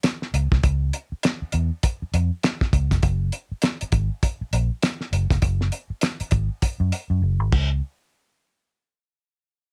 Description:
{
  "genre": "funk",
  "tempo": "100 BPM",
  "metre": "4/4",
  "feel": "swing 60% on 16ths",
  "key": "unclear",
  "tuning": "A4 = 438 Hz",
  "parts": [
    { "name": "cloth-damped thuddy drum kit", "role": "drums", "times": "0.0-7.7 s", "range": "crash cymbal, hi-hat, kick drum, snare drum", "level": "-24 LUFS", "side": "equal", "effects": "none" },
    { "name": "vintage muted fingered electric bass", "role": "bass", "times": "0.3-7.8 s", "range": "F1 to Gb2", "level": "-24 LUFS", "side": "equal", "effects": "none" }
  ],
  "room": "little or no reverb",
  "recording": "none",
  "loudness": "-23 LUFS",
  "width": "mono",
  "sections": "0.0-7.8 A section; 7.8-9.7 B section",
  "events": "drum fill 7.2-7.8",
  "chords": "none"
}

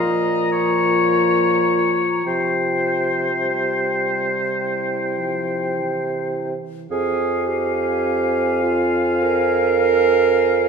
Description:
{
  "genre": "classical, slow romantic movement for wind quintet",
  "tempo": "48-56 BPM",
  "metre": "4/4",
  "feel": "rubato",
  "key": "F minor",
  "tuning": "A4 = 440 Hz",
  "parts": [
    { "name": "concert flute", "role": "melody", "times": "0.0-10.7 s", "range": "G5 to Bb5", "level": "-28 LUFS", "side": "left 7 dB", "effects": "none" },
    { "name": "clear oboe", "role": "second line", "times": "0.0-10.7 s", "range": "C5 to F5", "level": "-23 LUFS", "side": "left 4 dB", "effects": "none" },
    { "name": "dark French horn", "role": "accompaniment", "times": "0.0-10.7 s", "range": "E3 to C4", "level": "-29 LUFS", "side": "left 3 dB", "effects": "none" },
    { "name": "mellow clarinet", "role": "accompaniment", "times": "0.0-10.7 s", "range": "E4 to Bb4", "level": "-22 LUFS", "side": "right 6 dB", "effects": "none" },
    { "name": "mellow bassoon", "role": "bass", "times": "0.0-10.7 s", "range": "F2 to C3", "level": "-22 LUFS", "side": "right 1 dB", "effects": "none" }
  ],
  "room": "wet recital hall reverb, RT60 1.5 s",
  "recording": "recorded in a church or concert hall",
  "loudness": "-17 LUFS",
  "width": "side -5 dB against mid",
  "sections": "0.0-6.9 A section; 6.9-10.7 B section",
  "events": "none",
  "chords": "0.0 Bbm; 2.3 Csus4; 4.6 C; 6.9 Fm"
}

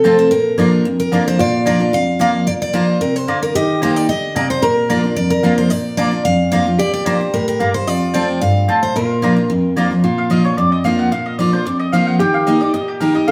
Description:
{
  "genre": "bluegrass",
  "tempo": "222 BPM",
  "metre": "4/4",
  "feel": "straight",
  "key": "Bb major",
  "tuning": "A4 = 444 Hz",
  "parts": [
    { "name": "picked steel-string acoustic guitar", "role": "melody", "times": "0.0-9.7 s", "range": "A4 to F5", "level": "-20 LUFS", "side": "equal", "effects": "none" },
    { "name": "picked steel-string acoustic guitar", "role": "accompaniment", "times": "0.0-13.3 s", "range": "F2 to G4", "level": "-18 LUFS", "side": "equal", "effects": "none" },
    { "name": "mandolin", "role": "stabs", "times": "0.0-13.3 s", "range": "Bb3 to Bb5", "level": "-23 LUFS", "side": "equal", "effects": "none" },
    { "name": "lap resonator guitar", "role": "second line", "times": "1.4-13.3 s", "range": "F4 to Bb4", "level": "-25 LUFS", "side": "equal", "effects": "none" }
  ],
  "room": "wet studio reverb, RT60 0.8 s",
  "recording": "heard from further back in the room",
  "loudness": "-16 LUFS",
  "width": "mono",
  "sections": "0.0-1.4 A section; 1.4-10.0 B section; 10.0-13.3 C section",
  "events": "mandolin solo 10.0-13.3",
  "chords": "0.3 Bb; 3.6 Eb; 4.6 Bb; 7.9 F; 9.0 Bb; 12.2 Eb"
}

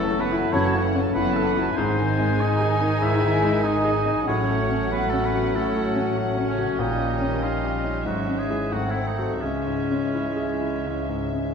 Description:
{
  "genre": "classical",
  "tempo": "94 BPM",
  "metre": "4/4",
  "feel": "uneven beats, rubato",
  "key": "C# minor",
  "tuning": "A4 = 441 Hz",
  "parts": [
    { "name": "clear concert grand piano", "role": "melody", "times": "0.0-11.5 s", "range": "C#2 to A4", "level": "-26 LUFS", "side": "left 3 dB", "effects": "none" },
    { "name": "muted studio violin section", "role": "melody", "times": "0.0-11.5 s", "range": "D#5 to A5", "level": "-34 LUFS", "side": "left 4 dB", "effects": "none" },
    { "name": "clear oboe", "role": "second line", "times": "0.0-11.5 s", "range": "C#4 to E5", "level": "-30 LUFS", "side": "right 3 dB", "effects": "none" },
    { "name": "muted studio violin section", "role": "second line", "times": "0.0-11.5 s", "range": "B#3 to F#4", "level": "-35 LUFS", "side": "right 1 dB", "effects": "none" },
    { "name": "muted studio viola section", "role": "accompaniment", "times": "0.0-11.5 s", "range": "D#3 to A3", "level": "-35 LUFS", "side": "right 5 dB", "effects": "none" },
    { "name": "warm French horn section", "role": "sustained chords", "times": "0.0-11.5 s", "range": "D#3 to A4", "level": "-32 LUFS", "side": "left 5 dB", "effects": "none" },
    { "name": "muted studio cello section", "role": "bass", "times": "0.0-11.5 s", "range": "C#3 to E4", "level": "-32 LUFS", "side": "right 3 dB", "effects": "none" },
    { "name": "muted studio double bass section", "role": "bass", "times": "0.0-11.5 s", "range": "F#1 to C#2", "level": "-30 LUFS", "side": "right 3 dB", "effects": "none" },
    { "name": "bright clarinet", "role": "second line", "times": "0.5-11.5 s", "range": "B#3 to E4", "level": "-34 LUFS", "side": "equal", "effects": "none" },
    { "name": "mellow hollow concert flute", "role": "second line", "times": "0.5-11.5 s", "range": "E5 to A5", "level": "-34 LUFS", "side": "left 2 dB", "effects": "none" },
    { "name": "mellow bassoon", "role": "accompaniment", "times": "0.5-11.5 s", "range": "F#3 to A#3", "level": "-32 LUFS", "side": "right 2 dB", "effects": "none" }
  ],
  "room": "wet scoring stage reverb, RT60 1.5 s",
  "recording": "none",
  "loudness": "-21 LUFS",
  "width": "side -6 dB against mid",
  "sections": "0.0-11.5 A section",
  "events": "none",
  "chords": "0.0 F#m7; 1.8 G#; 4.3 F#m/A; 6.8 D#7/A#; 8.1 C#m/G#; 8.7 G#7b9; 9.4 C#m"
}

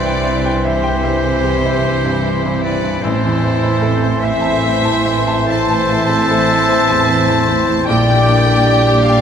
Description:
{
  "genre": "classical, romantic movement for piano and orchestra",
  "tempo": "51 BPM (dotted quarters)",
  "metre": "12/8",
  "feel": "rubato",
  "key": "C major",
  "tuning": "A4 = 441 Hz",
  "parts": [
    { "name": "clear grand piano", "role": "melody", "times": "0.0-9.2 s", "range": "A1 to A5", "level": "-20 LUFS", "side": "left 3 dB", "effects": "none" },
    { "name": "warm symphonic violin section", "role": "melody", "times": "0.0-9.2 s", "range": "E4 to G4", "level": "-27 LUFS", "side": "left 3 dB", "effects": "none" },
    { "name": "silver concert flute", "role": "second line", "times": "0.0-9.2 s", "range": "C6 to D6", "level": "-26 LUFS", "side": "left 3 dB", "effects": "none" },
    { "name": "warm clarinet", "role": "second line", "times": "0.0-9.2 s", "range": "C5 to A5", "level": "-23 LUFS", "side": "left 3 dB", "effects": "none" },
    { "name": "warm oboe", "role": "second line", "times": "0.0-9.2 s", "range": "G4 to E5", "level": "-24 LUFS", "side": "right 2 dB", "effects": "none" },
    { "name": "warm symphonic violin section", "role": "second line", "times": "0.0-9.2 s", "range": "C5 to A5", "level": "-22 LUFS", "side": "left 2 dB", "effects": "none" },
    { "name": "dark symphonic viola section", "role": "accompaniment", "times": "0.0-9.2 s", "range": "D3 to D4", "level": "-24 LUFS", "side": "right 3 dB", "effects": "none" },
    { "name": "warm bassoon", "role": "accompaniment", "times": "0.0-9.2 s", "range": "E3 to G3", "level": "-24 LUFS", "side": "right 1 dB", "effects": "none" },
    { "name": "clear trombone section", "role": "sustained chords", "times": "0.0-9.2 s", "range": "G2 to G3", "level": "-25 LUFS", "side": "right 4 dB", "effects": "none" },
    { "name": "dark French horn section", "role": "sustained chords", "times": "0.0-9.2 s", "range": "G3 to E4", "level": "-24 LUFS", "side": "left 4 dB", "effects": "none" },
    { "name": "mellow trumpet", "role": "stabs", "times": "0.0-9.2 s", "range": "C5 to D5", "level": "-23 LUFS", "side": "right 2 dB", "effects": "none" },
    { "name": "rich symphonic cello section", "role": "bass", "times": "0.0-9.2 s", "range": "A2 to C3", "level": "-23 LUFS", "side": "right 3 dB", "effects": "none" },
    { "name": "warm studio double bass section", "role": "bass", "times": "0.0-9.2 s", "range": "A1 to C2", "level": "-20 LUFS", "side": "right 2 dB", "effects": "none" }
  ],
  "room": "wet scoring stage reverb, RT60 1.7 s",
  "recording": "none",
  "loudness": "-12 LUFS",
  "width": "side -8 dB against mid",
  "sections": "0.0-9.2 A section",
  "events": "none",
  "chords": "0.0 C; 3.0 Am; 7.9 Gm/Bb"
}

